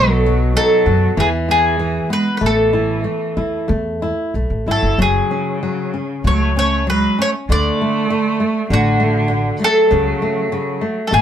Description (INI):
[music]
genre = fado-style ballad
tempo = 96 BPM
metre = 4/4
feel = rubato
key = F# minor from 5.0 s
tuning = A4 = 440 Hz
[part]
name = mandolin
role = melody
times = 0.0-11.2 s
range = F#4 to D5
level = -18 LUFS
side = equal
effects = none
[part]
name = rich cello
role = second line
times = 0.0-11.2 s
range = C#3 to A3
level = -22 LUFS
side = right 4 dB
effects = none
[part]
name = flamenco guitar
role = accompaniment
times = 0.0-11.2 s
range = B2 to F#4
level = -21 LUFS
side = left 2 dB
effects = none
[part]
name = upright bass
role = bass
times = 0.0-11.2 s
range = F#1 to F#2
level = -18 LUFS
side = equal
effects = none
[sound]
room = moderate studio ambience, RT60 0.5 s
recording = band playing live in one room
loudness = -14 LUFS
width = side -9 dB against mid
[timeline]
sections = 0.0-5.0 A section; 5.0-11.2 B section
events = none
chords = 0.0 B7; 1.2 E; 2.4 A5; 5.0 F#sus2; 7.5 D; 9.9 F#m/C#